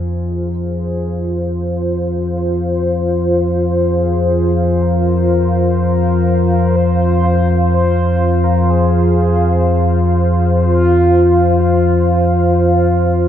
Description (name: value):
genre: dark ambient drone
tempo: 62 BPM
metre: 4/4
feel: straight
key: F minor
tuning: A4 = 440 Hz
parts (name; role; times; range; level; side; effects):
- mellow horn-like synth lead; melody; 0.0-13.3 s; F4 to C5; -19 LUFS; equal; chorus, tape echo
- dark analog pad; sustained chords; 0.0-13.3 s; F4 to F5; -17 LUFS; equal; chorus
- deep rumbling drone; drone; 0.0-13.3 s; F2 to F3; -14 LUFS; left 1 dB; built-in reverb
room: wet cathedral reverb, RT60 5.8 s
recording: in a vast, echoing space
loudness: -12 LUFS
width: side -10 dB against mid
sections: 0.0-13.3 A section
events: fade-in on soft synth lead 0.0-13.3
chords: 0.0 Fm